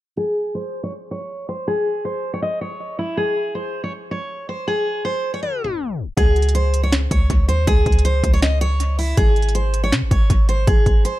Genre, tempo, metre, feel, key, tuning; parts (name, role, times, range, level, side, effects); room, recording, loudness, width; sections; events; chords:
hip hop, trap; 160 BPM; 4/4; half-time; C# harmonic minor; A4 = 440 Hz
picked steel-string acoustic guitar; melody; 0.2-11.2 s; E4 to D#5; -22 LUFS; equal; low-pass filter, analog delay
clean 808-style bass; bass; 6.2-11.0 s; G#1 to B#2; -18 LUFS; equal
trap drum kit; drums; 6.2-11.1 s; hi-hat, kick drum, snare drum; -18 LUFS; equal
little or no reverb; echo-heavy mix, tape stop; -17 LUFS; side -16 dB against mid
0.2-6.2 A section; 6.2-11.2 B section
filter sweep on steel-string acoustic guitar 0.2-6.2; tape stop 5.4-6.2
0.2 N.C.; 6.2 C#5; 9.2 G#